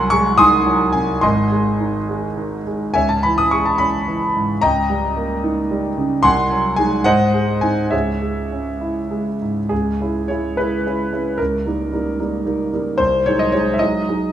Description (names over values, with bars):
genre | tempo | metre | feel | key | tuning
classical, romantic character piece for solo piano | 65-76 BPM (dotted quarters) | 6/8 | rubato | C# minor | A4 = 441 Hz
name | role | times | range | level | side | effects
warm concert grand piano | solo | 0.0-14.3 s | G#1 to D#6 | -16 LUFS | equal | none
room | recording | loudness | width
wet recital hall reverb, RT60 1.4 s | minimal, uncompressed stereo recording | -16 LUFS | side -10 dB against mid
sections
0.0-9.7 A section; 9.7-14.3 B section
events
none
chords
0.0 G#7/B#; 1.2 G#; 3.0 C#m; 4.6 D#7/C#; 6.2 G#7/B#; 7.1 G#7; 7.9 C#m; 11.4 D#7/C#; 13.0 G#7/B#